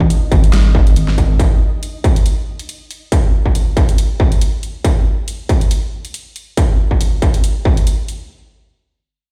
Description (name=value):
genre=deep dubstep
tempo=139 BPM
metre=4/4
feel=swing 56% on 16ths, half-time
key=unclear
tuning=A4 = 437 Hz
part: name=saturated sub bass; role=bass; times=0.0-1.4 s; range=G#1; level=-15 LUFS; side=equal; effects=none
part: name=electronic kick drum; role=drums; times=0.0-7.7 s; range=none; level=-15 LUFS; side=equal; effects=distortion
part: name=flickering grainy texture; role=texture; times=0.0-1.4 s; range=D#4 to D#5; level=-37 LUFS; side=equal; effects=built-in reverb
part: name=dubstep drum kit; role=drums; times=0.1-8.2 s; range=hi-hat, snare drum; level=-29 LUFS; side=equal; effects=none
room=little or no reverb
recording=played on a big sound system in a bare room, stone room reverb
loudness=-15 LUFS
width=mono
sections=0.0-8.3 A section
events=none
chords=0.0 G#5